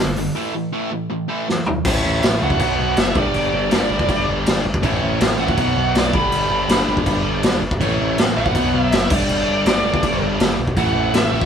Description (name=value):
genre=punk rock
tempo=162 BPM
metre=4/4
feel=straight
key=unclear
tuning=A4 = 442 Hz
part: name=distorted electric guitar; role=riff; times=0.0-11.5 s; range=G2 to B3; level=-22 LUFS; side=equal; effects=overdrive
part: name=growling picked electric bass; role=bass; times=0.0-11.5 s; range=F#1 to C#2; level=-24 LUFS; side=equal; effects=overdrive
part: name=raw garage drum kit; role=drums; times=0.2-11.5 s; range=crash cymbal, hi-hat, kick drum, snare drum, toms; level=-19 LUFS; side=equal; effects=none
part: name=bluesy overdriven lead guitar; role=melody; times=1.9-11.5 s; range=C#5 to B5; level=-23 LUFS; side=right 2 dB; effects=distortion, tape echo
room=light reverb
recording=band playing live in one room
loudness=-16 LUFS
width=side -8 dB against mid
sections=0.0-1.9 A section; 1.9-11.5 B section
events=break 0.4-1.9; drum fill 1.5-1.9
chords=0.4 A5; 1.9 A; 2.6 B5; 3.2 G5; 4.8 A; 5.6 B5; 6.1 G; 7.8 A; 8.6 B5; 9.1 G5; 10.8 A5